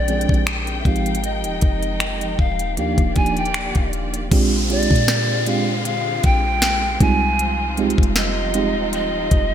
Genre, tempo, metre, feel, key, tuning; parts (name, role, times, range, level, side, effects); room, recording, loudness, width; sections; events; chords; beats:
contemporary R&B; 78 BPM; 4/4; swing 54% on 16ths; A4 = 439 Hz
reedy pan flute; melody; 0.0-9.5 s; D5 to Ab5; -23 LUFS; equal; ping-pong delay
FM electric piano with tremolo; accompaniment; 0.0-9.5 s; F3 to Ab4; -24 LUFS; right 4 dB
warm studio string section; sustained chords; 0.0-9.5 s; D3 to G5; -29 LUFS; left 2 dB; sidechain pumping
clean 808-style bass; bass; 0.0-9.5 s; Eb1 to Bb2; -24 LUFS; equal
trap drum kit; drums; 0.1-9.5 s; crash cymbal, finger snaps, hi-hat, kick drum, snare drum; -20 LUFS; equal; gated reverb
swell and downlifter; sound effects; 3.4-9.5 s; -30 LUFS; equal
light reverb, digital ambience; bright 1980s-style digital production; -17 LUFS; side -9 dB against mid
0.0-4.3 A section; 4.3-9.5 B section
0.0 Bb13; 0.9 Fm9; 2.8 Ebmaj7; 4.3 Bb13; 7.0 Fm9
0.47 | 1.24 2.01 2.77 3.54 | 4.31 5.08 5.85 6.62 | 7.39 8.16 8.93